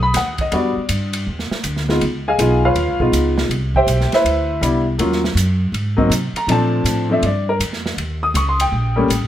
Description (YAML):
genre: jazz, small-group swing and bop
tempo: 161 BPM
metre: 4/4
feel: swing 65% on 8ths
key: unclear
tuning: A4 = 440 Hz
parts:
  - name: warm upright piano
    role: accompaniment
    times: 0.0-9.1 s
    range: F3 to Eb6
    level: -17 LUFS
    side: left 1 dB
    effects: none
  - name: upright bass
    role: bass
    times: 0.0-9.3 s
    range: G1 to B#2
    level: -20 LUFS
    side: equal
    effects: none
  - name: open jazz drum kit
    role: drums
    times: 0.1-9.2 s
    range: hi-hat, kick drum, ride cymbal, snare drum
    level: -25 LUFS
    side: right 1 dB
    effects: none
room: light reverb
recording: none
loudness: -15 LUFS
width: side -11 dB against mid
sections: 0.0-9.3 A section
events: none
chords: 0.0 B; 0.5 Em7; 2.0 C#9; 3.5 Cmaj7; 5.0 Ebm7; 5.7 G#9; 6.5 Bbmaj9; 8.0 Eb7#11